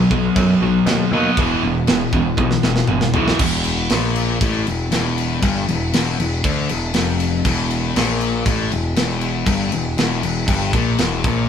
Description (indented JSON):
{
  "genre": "heavy metal",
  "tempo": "119 BPM",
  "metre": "4/4",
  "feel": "straight",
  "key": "unclear",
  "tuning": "A4 = 437 Hz",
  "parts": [
    { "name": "scooped high-gain guitar", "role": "riff", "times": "0.0-3.4 s", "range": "E2 to B3", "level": "-20 LUFS", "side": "right 2 dB", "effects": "distortion" },
    { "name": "sludgy distorted guitar", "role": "riff", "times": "0.0-11.5 s", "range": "E2 to B3", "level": "-20 LUFS", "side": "left 3 dB", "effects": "overdrive" },
    { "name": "overdriven picked electric bass", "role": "bass", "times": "0.0-11.5 s", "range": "E1 to F#2", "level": "-23 LUFS", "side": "equal", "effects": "none" },
    { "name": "tight metal drum kit", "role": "drums", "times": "0.1-11.4 s", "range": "crash cymbal, kick drum, snare drum, toms", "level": "-21 LUFS", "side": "equal", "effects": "none" }
  ],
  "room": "wet small room reverb, RT60 0.5 s",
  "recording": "band playing live in one room",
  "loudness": "-16 LUFS",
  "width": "side -8 dB against mid",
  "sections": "0.0-3.4 A section; 3.4-11.5 B section",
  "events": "drum fill 2.4-3.4",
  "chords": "0.0 B; 1.4 E5; 3.4 Em",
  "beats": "0.37 0.88 | 1.38 1.89 2.39 2.90 | 3.40 3.91 4.41 4.92 | 5.42 5.93 6.44 6.94 | 7.45 7.95 8.46 8.97 | 9.47 9.98 10.48 10.99"
}